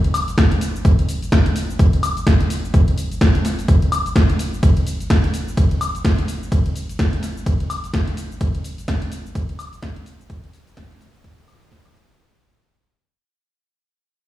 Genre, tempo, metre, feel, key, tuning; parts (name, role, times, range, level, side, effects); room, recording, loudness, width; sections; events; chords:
house; 127 BPM; 4/4; swing 59% on 16ths
punchy analog drum machine; drums; 0.0-12.2 s; hi-hat, ride cymbal, shaker, snare drum, woodblock; -24 LUFS; left 1 dB; overdrive
electronic kick drum; drums; 0.4-11.8 s; -18 LUFS; equal; overdrive
light reverb, digital ambience; played on a big sound system in a bare room, large studio reverb, studio ambience; -16 LUFS; side -14 dB against mid
0.0-12.2 A section
drop 0.0-12.2; fade-out 4.6-12.2